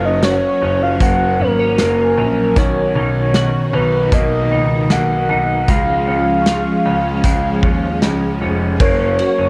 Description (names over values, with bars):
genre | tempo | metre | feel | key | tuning
dream pop | 77 BPM | 4/4 | straight | F# major | A4 = 440 Hz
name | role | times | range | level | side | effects
soft octave-layered synth lead | melody | 0.0-9.5 s | A#4 to F#5 | -20 LUFS | equal | chorus, shimmer reverb
string machine, violins | sustained chords | 0.0-9.5 s | B2 to C#4 | -23 LUFS | equal | ensemble chorus, shimmer reverb
semi-hollow electric guitar | arpeggios | 0.0-9.5 s | D#3 to F#4 | -25 LUFS | equal | ensemble chorus, analog delay, shimmer reverb
clear concert grand piano | bass | 0.0-9.5 s | E#1 to D#2 | -23 LUFS | equal | none
loose indie drum kit | drums | 0.2-9.4 s | hi-hat, kick drum, ride cymbal, snare drum | -19 LUFS | equal | none
large celesta | texture | 2.0-9.2 s | G#5 to C#6 | -37 LUFS | equal | none
room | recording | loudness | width
moderate plate reverb, RT60 2.5 s | dark, warm production | -16 LUFS | mono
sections
0.0-8.8 A section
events
none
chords
0.0 F#; 2.6 Bmaj7; 5.7 C#; 8.8 F#